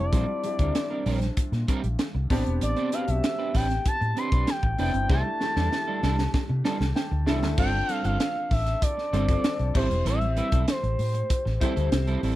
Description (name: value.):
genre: polished 1980s jazz-funk pop.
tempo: 97 BPM.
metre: 4/4.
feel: straight.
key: unclear.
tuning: A4 = 441 Hz.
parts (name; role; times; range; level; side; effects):
expressive portamento lead; melody; 0.0-11.9 s; C5 to C6; -29 LUFS; equal; chorus, slapback echo.
warm baby grand piano; accompaniment; 0.0-12.4 s; G3 to A5; -32 LUFS; left 2 dB; lush chorus.
vintage muted fingered electric bass; bass; 0.0-12.4 s; E1 to C3; -26 LUFS; equal; none.
electric guitar at the edge of break-up; riff; 0.1-12.4 s; G3 to C5; -31 LUFS; right 5 dB; analog chorus.
crisp fusion drum kit; drums; 0.1-12.4 s; crash cymbal, hi-hat, kick drum, snare drum; -28 LUFS; equal; none.
room: little or no reverb.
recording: none.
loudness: -23 LUFS.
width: side -15 dB against mid.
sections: 0.0-7.6 A section; 7.6-12.4 B section.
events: drum fill 5.1-7.6; grand piano fill 6.3-7.6.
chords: 0.0 Bb69; 2.3 Am11; 5.1 C69; 7.6 G9sus4; 9.8 Am7.